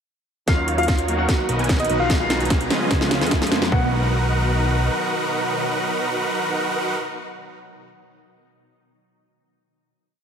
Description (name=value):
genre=future bass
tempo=148 BPM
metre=4/4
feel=half-time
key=B lydian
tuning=A4 = 440 Hz
part: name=warm grand piano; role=melody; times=0.5-7.0 s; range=D#4 to F#5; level=-26 LUFS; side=left 1 dB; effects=analog chorus, sidechain pumping, ping-pong delay
part: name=tine electric piano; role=accompaniment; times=0.5-7.0 s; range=C#3 to F#4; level=-31 LUFS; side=equal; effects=wide subtle chorus, sidechain pumping, ping-pong delay
part: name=shimmering ambient pad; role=sustained chords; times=1.6-7.0 s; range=B2 to F#4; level=-33 LUFS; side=left 1 dB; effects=chorus, built-in reverb, sidechain pumping
part: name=thumb-piano-like synth pluck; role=arpeggios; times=0.5-3.9 s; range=G#3 to F#4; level=-34 LUFS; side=right 2 dB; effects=none
part: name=supersaw chords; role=riff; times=0.5-7.0 s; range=C#4 to A#5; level=-24 LUFS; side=right 1 dB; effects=sidechain pumping, low-pass filter, ping-pong delay
part: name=fat analog bass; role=bass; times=0.5-4.9 s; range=B1 to E#2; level=-24 LUFS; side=equal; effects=sidechain pumping
part: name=electronic kick drum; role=drums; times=0.5-3.8 s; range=none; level=-21 LUFS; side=equal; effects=overdrive
part: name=trap drum kit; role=drums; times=0.5-3.7 s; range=hi-hat, snare drum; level=-24 LUFS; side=equal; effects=overdrive
part: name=riser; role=sound effects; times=1.9-3.7 s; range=none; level=-31 LUFS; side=right 2 dB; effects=none
room=moderate plate reverb, RT60 2.4 s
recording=dreamy mix soaked in reverb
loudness=-18 LUFS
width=side -7 dB against mid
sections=0.5-3.7 build; 3.7-7.0 final chord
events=build-up 0.5-3.7; drum fill 0.5-3.7; riser 1.9-3.7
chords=0.5 D#m9; 1.3 Bmaj7; 2.1 G#m7/B; 2.9 C#7; 3.7 Bmaj7